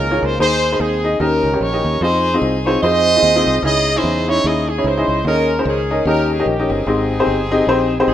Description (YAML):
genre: uptempo gospel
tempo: 148 BPM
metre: 4/4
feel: swing 59% on 8ths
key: Ab major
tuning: A4 = 439 Hz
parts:
  - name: warm horn section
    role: melody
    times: 0.0-8.1 s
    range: C4 to Eb5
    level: -18 LUFS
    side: right 1 dB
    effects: none
  - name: warm upright piano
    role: accompaniment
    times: 0.0-8.1 s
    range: Ab2 to Eb5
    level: -17 LUFS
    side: left 1 dB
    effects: none
  - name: fingered electric bass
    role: bass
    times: 0.0-8.1 s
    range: G1 to F2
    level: -22 LUFS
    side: right 1 dB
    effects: none
room: light reverb, small room reverb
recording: rough home demo mix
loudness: -14 LUFS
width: side -11 dB against mid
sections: 0.0-8.1 A section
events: none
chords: 0.4 Ab/Eb; 1.2 Eb7; 2.0 Fm7; 3.6 Dbmadd9; 5.3 Eb7sus4; 6.1 Eb7; 6.9 Abmaj7